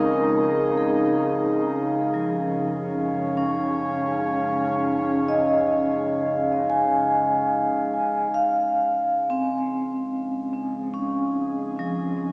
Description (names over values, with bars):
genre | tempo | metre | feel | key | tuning
ambient | 73 BPM | 4/4 | straight | Db major | A4 = 440 Hz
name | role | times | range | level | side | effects
airy breathy pad | sustained chords | 0.0-12.3 s | Db3 to Ab4 | -26 LUFS | equal | chorus
vibraphone with medium mallets | arpeggios | 0.0-12.3 s | F3 to Ab5 | -23 LUFS | equal | analog delay
warm sub bass | bass | 0.0-12.3 s | Db2 to Gb2 | -47 LUFS | equal | none
analog drone | drone | 0.0-12.3 s | Db3 to Ab3 | -33 LUFS | equal | chorus, phaser
glass harmonica | texture | 0.0-8.3 s | Eb4 to F5 | -28 LUFS | equal | none
room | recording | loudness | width
wet lush hall reverb, RT60 2.8 s | dreamy mix soaked in reverb, cassette tape, small speaker sound | -21 LUFS | side -39 dB against mid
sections
0.0-8.3 A section; 8.3-12.3 A section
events
none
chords
0.0 Dbadd9; 1.7 Gb5; 8.3 Dbadd9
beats
0.09 0.91 | 1.73 2.56 3.38 4.20 | 5.02 5.84 6.67 7.49 | 8.31 9.13 9.95 10.78 | 11.60